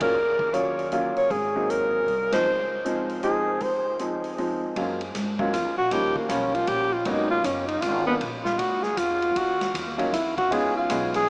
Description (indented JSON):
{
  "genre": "jazz, small-group swing and bop",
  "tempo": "156 BPM",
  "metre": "3/4",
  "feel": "swing 64% on 8ths",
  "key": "Db major, F# major from 4.8 s",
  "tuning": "A4 = 440 Hz",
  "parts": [
    { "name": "breathy alto saxophone", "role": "melody", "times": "0.0-11.3 s", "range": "A#3 to Db5", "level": "-27 LUFS", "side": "equal", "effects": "none" },
    { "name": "clear baby grand piano", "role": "accompaniment", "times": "0.0-11.3 s", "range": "F3 to G#4", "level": "-31 LUFS", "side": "equal", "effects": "none" },
    { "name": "upright bass", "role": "bass", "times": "0.0-11.3 s", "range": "F#1 to G#2", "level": "-39 LUFS", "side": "equal", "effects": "none" },
    { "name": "swinging big-band drum kit", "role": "drums", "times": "0.0-11.2 s", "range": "hi-hat, kick drum, ride cymbal, snare drum", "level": "-38 LUFS", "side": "equal", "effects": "none" }
  ],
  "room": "wet huge ambient reverb, RT60 8.5 s",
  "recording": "in a vast, echoing space, small speaker sound",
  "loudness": "-25 LUFS",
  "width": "mono",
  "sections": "0.0-4.8 A section; 4.8-11.3 B section",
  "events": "band accent 2.3",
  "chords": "0.1 Ebm9; 1.3 Ab7; 2.4 Dbmaj9; 4.8 F#maj9; 5.9 D#7; 7.1 G#m11; 8.2 A#; 9.4 D#m9; 10.5 C#7"
}